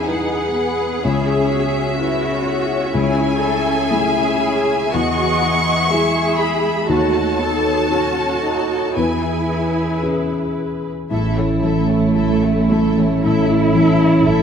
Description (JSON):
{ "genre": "cinematic, emotional film score for orchestra", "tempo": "54-64 BPM", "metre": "4/4", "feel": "rubato", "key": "unclear", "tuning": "A4 = 439 Hz", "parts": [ { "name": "warm symphonic violin section", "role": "melody", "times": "0.0-14.4 s", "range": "C#5 to C#6", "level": "-24 LUFS", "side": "left 2 dB", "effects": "none" }, { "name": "rich symphonic violin section", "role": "second line", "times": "0.0-14.4 s", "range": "E4 to F#5", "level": "-24 LUFS", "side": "left 2 dB", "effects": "none" }, { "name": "felt-muted upright piano", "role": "accompaniment", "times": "0.0-14.4 s", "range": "C#2 to B4", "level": "-22 LUFS", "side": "left 2 dB", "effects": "none" }, { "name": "warm symphonic viola section", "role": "accompaniment", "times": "0.0-14.4 s", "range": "G#3 to D#5", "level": "-25 LUFS", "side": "right 3 dB", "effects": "none" }, { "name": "concert harp", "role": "arpeggios", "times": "0.0-14.4 s", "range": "E2 to D#5", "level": "-23 LUFS", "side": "left 4 dB", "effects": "none" }, { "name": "warm studio cello section", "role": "bass", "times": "0.0-14.4 s", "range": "A3 to A4", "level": "-21 LUFS", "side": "right 4 dB", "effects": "none" }, { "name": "mellow French horn section", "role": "sustained chords", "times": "11.1-14.4 s", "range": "A3 to C#4", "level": "-21 LUFS", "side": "left 2 dB", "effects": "none" }, { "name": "warm symphonic double bass section", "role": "bass", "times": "11.1-14.4 s", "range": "A1", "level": "-23 LUFS", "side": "right 5 dB", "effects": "none" } ], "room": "moderate scoring stage reverb, RT60 1.8 s", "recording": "none", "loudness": "-15 LUFS", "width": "side -7 dB against mid", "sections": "0.0-11.1 A section; 11.1-14.4 B section", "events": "none", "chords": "0.0 Emaj7; 1.0 C#m7; 2.9 Amaj7/C#; 4.9 Emaj7; 6.9 D#dim; 9.0 C#m7/E; 11.1 A" }